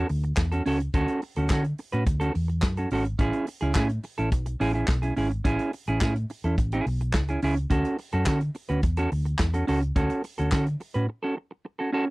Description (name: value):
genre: disco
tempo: 106 BPM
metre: 4/4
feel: straight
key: unclear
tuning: A4 = 442 Hz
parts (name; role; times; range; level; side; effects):
- semi-hollow electric guitar; accompaniment; 0.0-12.1 s; C#4 to B4; -26 LUFS; right 2 dB; none
- hollow-body short-scale fingered electric bass; bass; 0.0-11.1 s; G#1 to D3; -26 LUFS; equal; none
- warm soul drum kit; drums; 0.1-11.1 s; handclaps, hi-hat, kick drum, snare drum; -25 LUFS; equal; none
room: little or no reverb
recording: none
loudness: -24 LUFS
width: side -22 dB against mid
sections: 0.0-12.1 A section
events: break 11.1-12.1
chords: 0.0 Dmaj7; 3.2 Amaj7; 7.7 Dmaj7